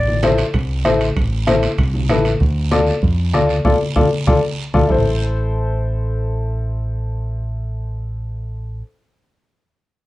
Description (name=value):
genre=latin, cumbia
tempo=193 BPM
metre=4/4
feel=straight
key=A minor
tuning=A4 = 440 Hz
part: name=deep dub fingered electric bass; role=bass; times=0.0-8.8 s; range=A1 to F2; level=-20 LUFS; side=equal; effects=none
part: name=congas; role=percussion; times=0.1-5.0 s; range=none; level=-22 LUFS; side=left 1 dB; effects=none
part: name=clear upright piano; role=accompaniment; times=0.2-8.8 s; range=E4 to D5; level=-19 LUFS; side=left 3 dB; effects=none
part: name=bombo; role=percussion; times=0.2-5.0 s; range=none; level=-20 LUFS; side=right 2 dB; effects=none
part: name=guiro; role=percussion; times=0.2-5.0 s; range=none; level=-32 LUFS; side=right 6 dB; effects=none
part: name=timbales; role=percussion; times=0.2-2.4 s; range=none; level=-32 LUFS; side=right 3 dB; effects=none
room=light reverb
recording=worn, warbling old tape, cassette tape, warbly pitch drift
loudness=-16 LUFS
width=side -17 dB against mid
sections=0.0-4.9 A section; 4.9-7.4 B section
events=band accent 3.6-4.9; drum fill 4.4-4.9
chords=0.0 Am; 2.4 Dm; 4.9 Am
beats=0.23 0.54 0.85 | 1.16 1.47 1.78 2.09 | 2.40 2.71 3.03 3.34 | 3.65 3.96 4.27 4.58 | 4.89 5.21 5.52 5.83 | 6.14 6.45 6.77 7.08